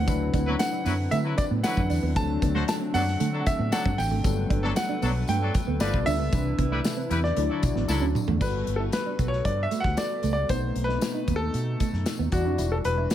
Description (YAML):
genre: polished 1980s jazz-funk pop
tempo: 115 BPM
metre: 4/4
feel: straight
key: unclear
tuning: A4 = 440 Hz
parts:
  - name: clear concert grand piano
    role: melody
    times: 0.0-13.1 s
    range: F#4 to A5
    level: -30 LUFS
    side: equal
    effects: none
  - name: overdriven tine electric piano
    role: accompaniment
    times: 0.0-13.1 s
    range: E3 to D5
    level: -33 LUFS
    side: left 4 dB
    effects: wide subtle chorus
  - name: hollow soft pad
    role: sustained chords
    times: 0.0-13.1 s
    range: B2 to B4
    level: -36 LUFS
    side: equal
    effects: chorus
  - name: mellow electric guitar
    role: riff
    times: 0.0-13.1 s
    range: A3 to E4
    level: -33 LUFS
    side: right 9 dB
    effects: analog chorus
  - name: vintage muted fingered electric bass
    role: bass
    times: 0.0-13.1 s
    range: E1 to D3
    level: -27 LUFS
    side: equal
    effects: none
  - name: modern studio drum kit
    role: drums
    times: 0.1-13.1 s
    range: crash cymbal, hi-hat, kick drum, snare drum, toms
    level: -29 LUFS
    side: equal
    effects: none
  - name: tambourine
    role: percussion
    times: 0.1-13.1 s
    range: none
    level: -42 LUFS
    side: left 7 dB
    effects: none
  - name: clear horn section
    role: second line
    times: 0.5-8.1 s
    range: F3 to C5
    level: -34 LUFS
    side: left 3 dB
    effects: none
room: light reverb, studio ambience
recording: none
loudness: -23 LUFS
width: side -11 dB against mid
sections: 0.0-8.4 A section; 8.4-13.1 B section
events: drum fill 7.9-8.4; grand piano solo 8.4-13.1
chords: 0.1 D69; 2.2 D7; 4.2 Gmaj9; 5.8 G9; 6.3 Cmaj9; 7.4 Dmaj9; 8.4 Gmaj9; 10.5 B7b9; 12.3 Em9